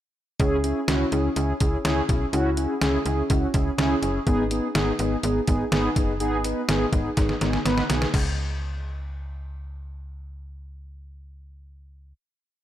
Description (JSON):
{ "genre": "synth-pop", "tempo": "124 BPM", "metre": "4/4", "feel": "straight", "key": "C# minor", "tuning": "A4 = 440 Hz", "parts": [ { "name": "mellow synth brass", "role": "accompaniment", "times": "0.4-8.1 s", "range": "B3 to B4", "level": "-24 LUFS", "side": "equal", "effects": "chorus" }, { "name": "slap-like FM bass", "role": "bass", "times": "0.4-12.1 s", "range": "F#1 to C#2", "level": "-28 LUFS", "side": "equal", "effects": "none" }, { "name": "detuned 8-bit digital drum machine", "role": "drums", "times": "0.4-8.3 s", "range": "crash cymbal, hi-hat, kick drum, snare drum", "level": "-26 LUFS", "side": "equal", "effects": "overdrive" } ], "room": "light reverb", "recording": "none", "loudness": "-21 LUFS", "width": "side -12 dB against mid", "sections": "0.4-8.1 verse; 8.1-12.0 final note", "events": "drum fill 7.2-8.1", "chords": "0.4 C#m; 4.3 G#m; 8.1 N.C.", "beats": "| 0.40 0.88 1.36 1.85 | 2.33 2.82 3.30 3.78 | 4.27 4.75 5.24 5.72 | 6.20 6.69 7.17 7.66 | 8.14 8.62 9.11 9.59 | 10.07 10.56 11.04 11.53" }